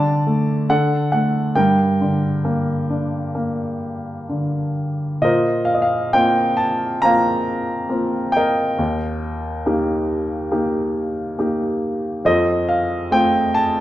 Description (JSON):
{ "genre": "classical, lyrical solo piano", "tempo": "68 BPM", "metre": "4/4", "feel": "rubato", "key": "G minor", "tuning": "A4 = 440 Hz", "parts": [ { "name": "warm upright piano", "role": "solo", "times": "0.0-13.8 s", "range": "Eb2 to Bb5", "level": "-17 LUFS", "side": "equal", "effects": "none" } ], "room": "moderate recital hall reverb, RT60 1.4 s", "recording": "dark, warm production", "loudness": "-17 LUFS", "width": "side -14 dB against mid", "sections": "0.0-5.2 A section; 5.2-13.8 B section", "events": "none", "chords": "0.0 D5; 1.6 Gm; 5.2 Bbsus2; 8.8 Eb; 12.2 F", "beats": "0.70 | 1.57 2.45 3.35 4.28 | 5.22 6.13 7.03 7.91 | 8.79 9.66 10.52 11.38 | 12.25 13.12" }